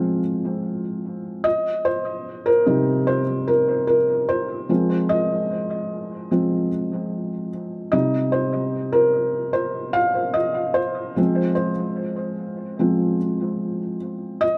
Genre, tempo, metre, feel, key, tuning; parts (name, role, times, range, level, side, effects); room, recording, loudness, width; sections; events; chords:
pop; 74 BPM; 4/4; straight; A4 = 444 Hz
felt-muted upright piano; solo; 0.0-14.6 s; C3 to F5; -22 LUFS; equal; analog delay
moderate echo chamber reverb, RT60 2.5 s; echo-heavy mix; -22 LUFS; mono
0.0-14.4 A section
felt piano solo 0.0-14.4
0.0 Fm; 1.5 Cm; 4.7 Fm; 7.9 Cm; 11.2 Fm